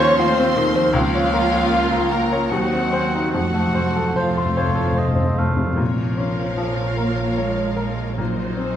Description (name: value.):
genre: classical, romantic movement for piano and orchestra.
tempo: 74 BPM.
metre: 3/4.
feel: uneven beats, rubato.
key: Bb minor.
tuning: A4 = 440 Hz.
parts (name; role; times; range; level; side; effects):
bright baby grand piano; melody; 0.0-8.8 s; Db2 to C6; -22 LUFS; left 2 dB; none.
rich studio violin section; melody; 0.0-8.8 s; F4 to Db6; -32 LUFS; left 4 dB; none.
dark clarinet; second line; 0.0-5.4 s; F4 to Db5; -29 LUFS; left 1 dB; none.
silver concert flute; second line; 0.0-5.4 s; F5 to Db6; -27 LUFS; left 1 dB; none.
warm studio violin section; second line; 0.0-8.8 s; F4 to F5; -28 LUFS; left 1 dB; none.
warm studio viola section; accompaniment; 0.0-8.8 s; F3 to C5; -28 LUFS; right 3 dB; none.
mellow French horn section; sustained chords; 0.0-8.8 s; C4 to Db5; -33 LUFS; left 2 dB; none.
warm trombone section; sustained chords; 0.0-5.4 s; C3 to C4; -32 LUFS; right 4 dB; none.
clear trumpet; stabs; 0.0-5.4 s; F4 to Db5; -30 LUFS; right 2 dB; none.
clear studio double bass section; bass; 0.0-8.8 s; Bb1 to F2; -27 LUFS; right 4 dB; none.
warm studio cello section; bass; 0.0-8.8 s; F3 to Db4; -29 LUFS; right 1 dB; none.
timpani; percussion; 3.3-8.8 s; F2 to Bb2; -24 LUFS; left 1 dB; none.
warm oboe; second line; 4.2-5.8 s; C5 to F5; -29 LUFS; right 2 dB; none.
room: wet recital hall reverb, RT60 1.3 s.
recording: none.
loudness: -17 LUFS.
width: side -10 dB against mid.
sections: 0.0-5.8 A section; 5.8-8.8 B section.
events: timpani fill 3.3-5.8.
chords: 0.0 F7/Eb; 0.9 Bbm/Db; 2.5 Cdim/Eb; 3.3 F; 5.8 Bbm; 8.2 Cm7b5/Bb.